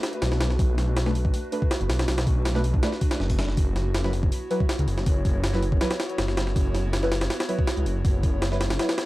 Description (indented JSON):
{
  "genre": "drum and bass, jungle",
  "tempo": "161 BPM",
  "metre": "4/4",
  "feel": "straight",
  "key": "B minor",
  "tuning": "A4 = 440 Hz",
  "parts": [
    { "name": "jungle sampler-style drum kit", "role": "drums", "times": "0.0-9.1 s", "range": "hi-hat, kick drum, snare drum", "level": "-25 LUFS", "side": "equal", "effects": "studio ambience" },
    { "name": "downlifter", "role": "sound effects", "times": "0.0-0.6 s", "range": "none", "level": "barely audible", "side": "none", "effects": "none" },
    { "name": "detuned saw bass", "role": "bass", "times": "0.2-8.8 s", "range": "F#1 to C#2", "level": "-25 LUFS", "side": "equal", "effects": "none" },
    { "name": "deep mellow chord stab", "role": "stabs", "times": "1.1-8.8 s", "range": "F#3 to B4", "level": "-31 LUFS", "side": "equal", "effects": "chorus, phaser, dub echo" }
  ],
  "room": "little or no reverb",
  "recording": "dry, gritty hardware recording, vinyl crackle",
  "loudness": "-22 LUFS",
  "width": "side -18 dB against mid",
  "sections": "0.0-9.1 A section",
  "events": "none",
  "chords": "0.0 Bm7; 3.6 F#7sus4"
}